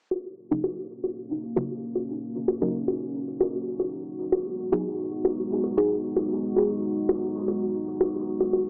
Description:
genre	dub techno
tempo	114 BPM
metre	4/4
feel	straight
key	Eb minor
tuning	A4 = 440 Hz
part	dark analog pad	sustained chords	0.1-8.7 s	Ab3 to Gb4	-29 LUFS	equal	chorus
part	bongos	percussion	0.1-8.6 s	none	-27 LUFS	equal	dub echo
part	filtered dub chord stab	stabs	0.5-5.9 s	Db3 to Ab4	-28 LUFS	equal	chorus, phaser, dub echo
room	moderate lush hall reverb, RT60 1.6 s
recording	low-pass filter, small speaker sound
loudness	-25 LUFS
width	side -30 dB against mid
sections	0.1-8.7 A section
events	filter sweep 0.1-8.7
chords	0.1 Ebm7; 4.3 Abm7

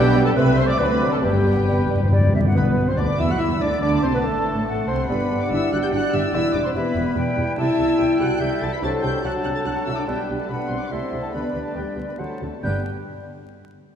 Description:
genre	quick classical-period movement for symphony orchestra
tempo	143 BPM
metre	3/4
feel	rubato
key	G major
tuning	A4 = 441 Hz
part	muted studio violin section	melody	0.0-12.9 s	G5 to B6	-32 LUFS	left 2 dB	none
part	clear clarinet	second line	0.0-12.8 s	D4 to F#5	-30 LUFS	left 1 dB	none
part	mellow oboe	second line	0.0-12.8 s	G4 to F#5	-33 LUFS	equal	none
part	muted studio violin section	second line	0.0-12.9 s	G4 to B5	-32 LUFS	left 1 dB	none
part	mellow bassoon	accompaniment	0.0-12.8 s	F#3 to F#4	-29 LUFS	right 2 dB	none
part	muted studio viola section	accompaniment	0.0-12.9 s	A3 to E5	-29 LUFS	right 2 dB	none
part	dark French horn section	sustained chords	0.0-12.8 s	F#3 to B4	-26 LUFS	left 2 dB	none
part	dark trumpet section	stabs	0.0-2.1 s	G4 to D5	-33 LUFS	right 1 dB	none
part	muted studio cello section	bass	0.0-12.9 s	E2 to F#3	-27 LUFS	right 1 dB	none
part	muted studio double bass section	bass	0.0-12.9 s	E1 to E2	-28 LUFS	right 2 dB	none
part	bright concert flute	second line	0.1-12.9 s	B4 to G6	-30 LUFS	left 2 dB	none
part	timpani	percussion	1.2-3.2, 12.6-12.8 s	G2	-21 LUFS	left 1 dB	none
room	wet concert hall reverb, RT60 2.6 s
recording	dark, warm production, vinyl crackle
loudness	-19 LUFS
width	side -8 dB against mid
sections	0.0-2.6 A section; 2.6-12.6 B section; 12.6-13.9 C section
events	timpani fill 1.2-2.6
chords	0.4 Am/C; 0.8 D7; 1.2 G; 2.6 D13/B; 3.8 D; 5.1 G5; 6.3 Em; 7.6 Am7/C; 8.8 D7/C; 10.1 G/B; 10.9 Am7/C; 11.3 G/D; 12.2 D7; 12.6 G

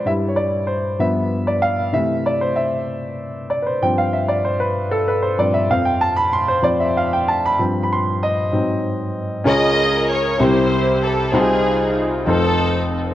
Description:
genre	gospel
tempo	64 BPM (dotted quarters)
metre	6/8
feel	straight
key	C major, Db major from 9.5 s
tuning	A4 = 438 Hz
part	warm grand piano	accompaniment	0.0-13.1 s	F1 to C6	-17 LUFS	equal	none
part	warm studio string section	melody	9.5-13.1 s	C4 to Eb5	-19 LUFS	equal	none
room	moderate concert hall reverb, RT60 1.9 s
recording	worn, warbling old tape, cassette tape, warbly pitch drift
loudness	-16 LUFS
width	side -13 dB against mid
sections	0.0-9.5 A section; 9.5-13.1 B section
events	grand piano solo 0.0-9.5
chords	0.1 Cadd9/G; 1.0 G7; 1.9 C6; 3.8 G7sus4; 5.7 Fmaj9#11; 7.6 G7sus4; 8.5 Ab7; 9.5 Db6; 10.4 C7; 11.3 Fm7/C; 12.3 F7

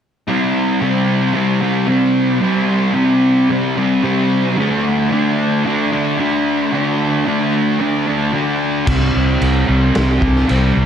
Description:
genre	rock, shoegaze and dream pop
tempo	112 BPM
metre	4/4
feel	straight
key	unclear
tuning	A4 = 438 Hz
part	thick fuzz guitar	riff	0.3-10.9 s	C3 to D4	-14 LUFS	equal	distortion, wide subtle chorus
part	vintage muted fingered electric bass	bass	8.9-10.9 s	C2	-16 LUFS	equal	none
part	raw garage drum kit	drums	8.9-10.6 s	crash cymbal, kick drum, snare drum	-20 LUFS	equal	none
room	wet church reverb, RT60 2.8 s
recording	dreamy mix soaked in reverb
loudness	-13 LUFS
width	side -8 dB against mid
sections	0.3-8.9 A section; 8.9-10.9 B section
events	none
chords	0.3 C5; 4.6 D5; 8.9 C5

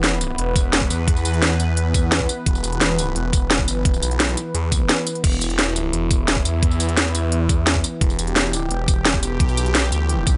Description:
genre	dark technical drum and bass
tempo	173 BPM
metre	4/4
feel	straight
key	E minor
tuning	A4 = 440 Hz
part	sweeping resonant pad	sustained chords	0.0-10.4 s	E3 to B4	-29 LUFS	equal	chorus, sidechain pumping
part	phased detuned saw bass	bass	0.0-10.4 s	E1 to E2	-24 LUFS	equal	phaser, tube saturation, sidechain pumping
part	drum and bass drum kit	drums	0.0-10.3 s	crash cymbal, hi-hat, snare drum, tambourine	-22 LUFS	equal	none
part	electronic kick drum	drums	0.6-10.3 s	none	-22 LUFS	equal	none
room	light reverb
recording	nothing above 10.6 kHz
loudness	-20 LUFS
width	mono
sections	0.0-10.4 A section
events	none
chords	0.0 Em

